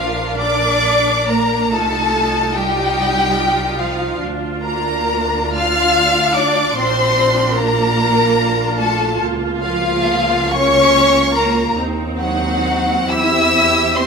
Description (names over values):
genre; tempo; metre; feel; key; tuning
classical, slow romantic movement for string orchestra; 48 BPM (dotted quarters); 6/8; uneven beats, rubato; Bb major, Bb minor from 9.2 s; A4 = 440 Hz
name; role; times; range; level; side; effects
rich chamber violin section; melody; 0.0-14.1 s; F5 to F6; -18 LUFS; left 2 dB; none
rich chamber violin section; second line; 0.0-14.1 s; F4 to F5; -19 LUFS; left 2 dB; none
rich chamber viola section; accompaniment; 0.0-14.1 s; Bb3 to Bb4; -23 LUFS; right 3 dB; none
dark chamber double bass section; bass; 0.0-14.1 s; Bb1 to E2; -24 LUFS; right 2 dB; none
rich chamber cello section; bass; 0.0-14.1 s; F3 to F4; -22 LUFS; right 3 dB; none
room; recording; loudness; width
wet recital hall reverb, RT60 1.6 s; minimal, uncompressed stereo recording; -13 LUFS; side -5 dB against mid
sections
0.0-14.1 A section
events
none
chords
0.0 Bb; 1.7 F7/C; 4.2 Bb/D; 6.8 Bb; 9.2 Bbm/Db; 11.8 Cdim/Eb; 13.1 C/E